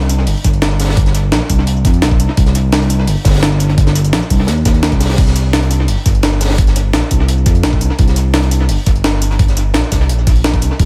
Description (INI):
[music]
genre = liquid drum and bass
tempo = 171 BPM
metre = 4/4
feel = straight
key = C minor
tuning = A4 = 439 Hz
[part]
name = smooth gliding synth bass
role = bass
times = 0.0-10.9 s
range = G1 to F2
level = -16 LUFS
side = equal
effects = none
[part]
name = crunchy breakbeat drum kit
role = drums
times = 0.0-10.9 s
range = hi-hat, snare drum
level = -28 LUFS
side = equal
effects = high-pass filter on hats, high-pass filter on snare, high-pass filter on room, dub echo
[part]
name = jungle sampler-style drum kit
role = drums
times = 0.1-10.9 s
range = crash cymbal, hi-hat, snare drum, tambourine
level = -20 LUFS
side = equal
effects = overdrive, dub echo
[part]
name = electronic kick drum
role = drums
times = 0.4-10.9 s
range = none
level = -15 LUFS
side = equal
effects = none
[sound]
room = little or no reverb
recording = echo-heavy mix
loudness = -13 LUFS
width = mono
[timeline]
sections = 0.0-10.9 A section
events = none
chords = none